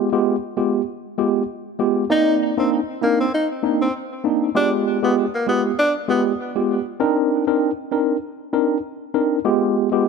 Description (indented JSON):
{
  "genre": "afrobeats",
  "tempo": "98 BPM",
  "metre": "4/4",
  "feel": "swing 55% on 16ths",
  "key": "C minor",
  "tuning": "A4 = 440 Hz",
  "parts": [
    { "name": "tine electric piano", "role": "accompaniment", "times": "0.0-10.1 s", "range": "Ab3 to D5", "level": "-19 LUFS", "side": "equal", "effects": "medium stereo tremolo" },
    { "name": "breathy tenor saxophone", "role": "melody", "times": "2.1-6.2 s", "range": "Bb3 to Eb4", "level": "-21 LUFS", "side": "equal", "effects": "tape echo" }
  ],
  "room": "moderate echo chamber reverb, RT60 1.8 s",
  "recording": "echo-heavy mix",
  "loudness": "-18 LUFS",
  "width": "side -5 dB against mid",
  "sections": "0.0-10.1 A section",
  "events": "none",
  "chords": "0.0 G7b9; 2.1 Cm9; 4.6 G7b9; 7.0 Cm9; 9.4 G7b9"
}